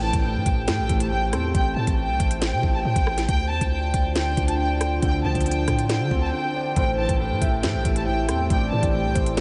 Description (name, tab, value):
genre	hip hop, drill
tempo	138 BPM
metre	4/4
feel	half-time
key	A minor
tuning	A4 = 440 Hz
part	warm chamber violin section	melody	0.0-9.4 s	G5 to A5	-30 LUFS	equal	none
part	dark concert grand piano	accompaniment	0.0-9.4 s	A2 to D4	-32 LUFS	equal	none
part	dark analog pad	sustained chords	0.0-9.4 s	D3 to C5	-33 LUFS	equal	chorus, phaser
part	long sustained 808-style bass	bass	0.0-9.4 s	A1 to D3	-28 LUFS	equal	none
part	drill drum kit	drums	0.1-9.4 s	hi-hat, kick drum, rim click, snare drum	-28 LUFS	equal	none
part	warm velvety synth lead	second line	6.8-9.4 s	C5 to E5	-32 LUFS	equal	chorus, tape echo
room	moderate huge ambient reverb, RT60 8.8 s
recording	dreamy mix soaked in reverb, nothing above 10.5 kHz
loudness	-23 LUFS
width	mono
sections	0.0-9.4 A section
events	break 6.3-6.8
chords	0.0 Am7; 3.3 Dm7; 6.8 Am7